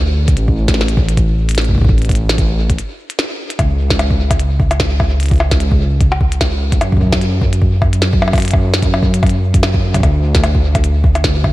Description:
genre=IDM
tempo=149 BPM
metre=4/4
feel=swing 56% on 16ths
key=unclear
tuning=A4 = 440 Hz
part: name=dark detuned saw bass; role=bass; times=0.0-11.5 s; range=A1 to F#2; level=-14 LUFS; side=equal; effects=none
part: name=electronic kick drum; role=drums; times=0.3-11.5 s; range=none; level=-15 LUFS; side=equal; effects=none
part: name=glitchy drum kit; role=drums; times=0.3-11.5 s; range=hi-hat, percussion blips, snare drum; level=-19 LUFS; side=left 1 dB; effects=diffuse ambient delay
room=little or no reverb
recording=none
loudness=-11 LUFS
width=side -17 dB against mid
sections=0.0-11.5 A section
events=break 2.8-3.6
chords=none

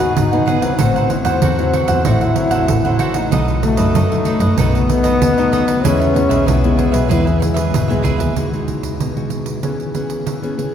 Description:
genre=samba and choro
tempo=95 BPM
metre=4/4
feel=straight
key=E major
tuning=A4 = 440 Hz
part: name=breathy trombone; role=second line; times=0.0-8.1 s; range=E3 to F#4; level=-19 LUFS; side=left 3 dB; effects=none
part: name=cavaquinho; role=accompaniment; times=0.0-8.3 s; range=D#4 to F#5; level=-22 LUFS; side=right 4 dB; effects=none
part: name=nylon-string guitar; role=accompaniment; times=0.0-10.7 s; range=F#2 to G#4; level=-22 LUFS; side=left 1 dB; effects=none
part: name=warm double bass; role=bass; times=0.0-8.3 s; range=G#1 to F#2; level=-19 LUFS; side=equal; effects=none
part: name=pandeiro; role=percussion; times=0.0-10.7 s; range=none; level=-21 LUFS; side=right 3 dB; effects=none
room=wet cathedral reverb, RT60 4.4 s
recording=recorded in a church or concert hall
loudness=-14 LUFS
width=side -9 dB against mid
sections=0.0-8.4 A section; 8.4-10.7 B section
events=trombone solo 0.0-8.4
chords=0.0 G#m7; 0.8 Am6; 3.3 B7; 5.8 E; 8.4 Emaj9; 9.6 C#m7/E

